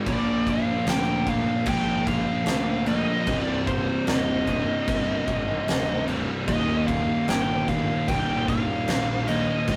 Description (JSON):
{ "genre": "stoner and doom metal", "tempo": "75 BPM", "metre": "4/4", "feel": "straight", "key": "unclear", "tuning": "A4 = 439 Hz", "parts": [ { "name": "thick fuzz guitar", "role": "riff", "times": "0.0-9.8 s", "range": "C2 to Bb3", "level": "-35 LUFS", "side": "equal", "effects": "none" }, { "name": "thick fuzz guitar", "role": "riff", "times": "0.0-9.8 s", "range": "C2 to Bb3", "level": "-30 LUFS", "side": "equal", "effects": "distortion" }, { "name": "thick fuzz guitar", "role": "riff", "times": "0.0-9.8 s", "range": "C2 to Bb3", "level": "-34 LUFS", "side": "equal", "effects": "none" }, { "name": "fuzz lead guitar", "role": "melody", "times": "0.1-9.8 s", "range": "C5 to G5", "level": "-31 LUFS", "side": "equal", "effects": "wah, distortion" }, { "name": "fuzz fingered electric bass", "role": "bass", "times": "0.1-9.8 s", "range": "C1 to D2", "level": "-34 LUFS", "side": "equal", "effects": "overdrive" }, { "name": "oversized low-tuned drum kit", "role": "drums", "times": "0.1-9.8 s", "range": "crash cymbal, kick drum, snare drum", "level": "-31 LUFS", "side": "equal", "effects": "none" } ], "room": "moderate studio reverb, RT60 0.5 s", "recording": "rough rehearsal-room recording", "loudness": "-24 LUFS", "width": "mono", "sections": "0.0-9.8 A section", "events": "none", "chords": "0.1 Bb; 3.3 Cm; 6.5 Eb" }